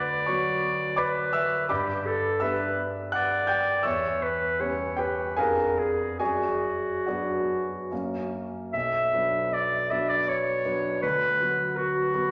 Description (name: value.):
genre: classical, romantic duo for clarinet and grand piano.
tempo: 68-87 BPM.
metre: 3/4.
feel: rubato.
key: B minor.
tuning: A4 = 440 Hz.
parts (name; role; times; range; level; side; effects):
warm clarinet; melody; 0.0-12.3 s; F#4 to E5; -28 LUFS; equal; none.
warm concert grand piano; accompaniment; 0.0-12.3 s; B1 to G6; -31 LUFS; equal; none.
room: wet recital hall reverb, RT60 1.7 s.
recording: none.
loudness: -27 LUFS.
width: mono.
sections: 0.0-8.7 A section; 8.7-12.3 B section.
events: none.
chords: 0.0 Bm/D; 1.7 G; 3.9 C#m7b5/E; 5.4 Fdim7; 6.2 Bm/F#; 7.9 F#; 8.7 Bm; 11.0 Bm/D.